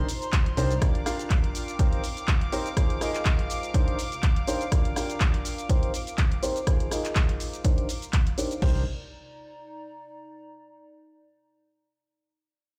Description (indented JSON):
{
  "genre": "piano house",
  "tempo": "123 BPM",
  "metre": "4/4",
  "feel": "swing 55% on 16ths",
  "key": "C minor",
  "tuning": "A4 = 441 Hz",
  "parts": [
    { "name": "warm symphonic violin section", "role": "sustained chords", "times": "0.0-8.6 s", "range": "C5 to D6", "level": "-40 LUFS", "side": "equal", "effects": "sidechain pumping, low-pass filter" },
    { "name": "clear upright piano", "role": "riff", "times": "0.0-8.8 s", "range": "C4 to F5", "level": "-34 LUFS", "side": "equal", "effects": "sidechain pumping, low-pass filter, digital delay" },
    { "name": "plucky analog bass", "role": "bass", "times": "0.0-0.8, 8.6-8.8 s", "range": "C2", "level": "-28 LUFS", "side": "equal", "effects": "sidechain pumping" },
    { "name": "warbly tape-like pad", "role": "texture", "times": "0.1-10.5 s", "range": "C3 to Bb5", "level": "-47 LUFS", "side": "equal", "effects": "chorus, built-in reverb, sidechain pumping" },
    { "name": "punchy analog drum machine", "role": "drums", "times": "0.1-8.7 s", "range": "cabasa, crash cymbal, handclaps, hi-hat, rim click", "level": "-36 LUFS", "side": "equal", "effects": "studio reverb" },
    { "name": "electronic kick drum", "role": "drums", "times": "0.3-8.7 s", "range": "none", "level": "-26 LUFS", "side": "equal", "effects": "studio reverb" }
  ],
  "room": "little or no reverb",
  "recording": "played on a big sound system in a bare room, large studio reverb",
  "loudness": "-26 LUFS",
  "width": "mono",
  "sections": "0.0-8.6 A section; 8.6-10.6 B section",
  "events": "filter sweep on upright piano 0.0-8.6",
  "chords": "0.0 Cm9; 0.8 Gm7; 1.8 Eb6; 2.8 Ab69; 3.7 Cm9; 4.7 Gm7; 5.7 Eb6; 6.7 Ab69; 7.6 Cm9"
}